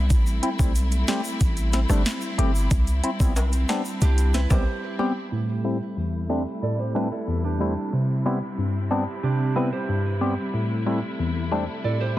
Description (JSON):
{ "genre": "dancehall", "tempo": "92 BPM", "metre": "4/4", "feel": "straight", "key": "A minor", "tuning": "A4 = 443 Hz", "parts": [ { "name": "warm studio string section", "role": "sustained chords", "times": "0.0-12.2 s", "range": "C3 to E4", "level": "-31 LUFS", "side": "equal", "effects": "sidechain pumping, low-pass filter" }, { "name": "warm 808-style bass", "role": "bass", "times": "0.0-4.7 s", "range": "G1 to C2", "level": "-22 LUFS", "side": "equal", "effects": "none" }, { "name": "island pop drum kit", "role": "drums", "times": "0.1-4.7 s", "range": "hi-hat, kick drum, rim click, snare drum", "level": "-23 LUFS", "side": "equal", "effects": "overdrive" }, { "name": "tube shaker and timbales", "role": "percussion", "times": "0.1-4.7 s", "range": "none", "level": "-36 LUFS", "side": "left 2 dB", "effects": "none" }, { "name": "percussive organ stab", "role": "accompaniment", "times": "0.4-12.2 s", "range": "E2 to G4", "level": "-25 LUFS", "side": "left 1 dB", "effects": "chorus, low-pass filter" }, { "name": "nylon-string guitar", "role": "arpeggios", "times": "4.0-12.2 s", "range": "D4 to D5", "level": "-32 LUFS", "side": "right 6 dB", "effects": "low-pass filter, tape echo" } ], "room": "light reverb, small room ambience", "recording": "dense, heavily limited modern master", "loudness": "-21 LUFS", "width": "side -15 dB against mid", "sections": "0.0-5.3 A section; 5.3-12.2 B section", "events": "break 4.7-5.3; filter sweep 5.3-12.2", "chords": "0.1 Am7; 2.7 Cmaj7; 5.3 Am7; 7.9 Cmaj7; 10.5 Am7" }